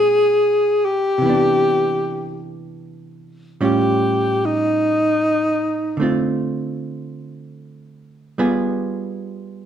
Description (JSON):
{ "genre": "jazz ballad", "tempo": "50 BPM", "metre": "4/4", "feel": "swing 67% on 8ths", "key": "C major", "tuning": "A4 = 440 Hz", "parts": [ { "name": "mellow tenor saxophone", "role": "melody", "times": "0.0-6.3 s", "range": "Eb4 to Ab4", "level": "-16 LUFS", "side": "left 1 dB", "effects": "plate reverb" }, { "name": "hollow-body jazz guitar", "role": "accompaniment", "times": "0.0-9.7 s", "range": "A2 to Ab4", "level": "-22 LUFS", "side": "right 3 dB", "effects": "none" } ], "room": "moderate large studio reverb, RT60 1.0 s", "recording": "none", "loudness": "-16 LUFS", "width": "side -9 dB against mid", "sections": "0.0-9.7 A section", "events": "tenor saxophone solo 0.0-9.7", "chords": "0.0 Bb9; 1.2 Cmaj9; 3.6 Aaug7; 6.0 Dm7; 8.4 G7b9" }